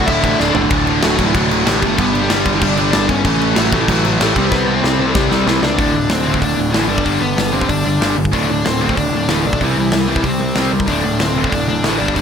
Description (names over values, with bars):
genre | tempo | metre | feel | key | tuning
punk rock | 189 BPM | 4/4 | straight | unclear | A4 = 441 Hz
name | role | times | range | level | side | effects
smooth overdriven lead guitar | melody | 0.0-12.2 s | E3 to E5 | -20 LUFS | left 4 dB | none
biting overdriven guitar | riff | 0.0-12.2 s | D2 to C4 | -22 LUFS | right 1 dB | none
overdriven electric guitar | riff | 0.0-12.2 s | D2 to C4 | -21 LUFS | left 14 dB | none
sludgy distorted guitar | riff | 0.0-12.2 s | D2 to C4 | -21 LUFS | right 10 dB | overdrive
overdriven picked electric bass | bass | 0.0-12.2 s | D1 to C#2 | -22 LUFS | equal | none
big rock drum kit | drums | 0.0-12.2 s | crash cymbal, hi-hat, kick drum, snare drum, toms | -20 LUFS | right 1 dB | none
room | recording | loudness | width
light reverb | none | -13 LUFS | side -7 dB against mid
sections
0.7-5.8 A section; 5.8-12.2 B section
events
drum fill 0.4-0.7, 4.5-5.8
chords
0.0 D5; 0.7 D; 1.8 G; 3.3 A; 4.4 C; 5.8 D5; 6.9 G; 8.3 D5; 9.6 C; 10.9 D5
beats
0.08 0.40 | 0.72 1.03 1.35 1.67 | 1.98 2.30 2.62 2.93 | 3.25 3.57 3.88 4.20 | 4.52 4.84 5.15 5.47 | 5.79 6.11 6.42 6.74 | 7.06 7.38 7.70 8.02 | 8.34 8.65 8.97 9.29 | 9.61 9.93 10.25 10.57 | 10.89 11.20 11.52 11.84 | 12.16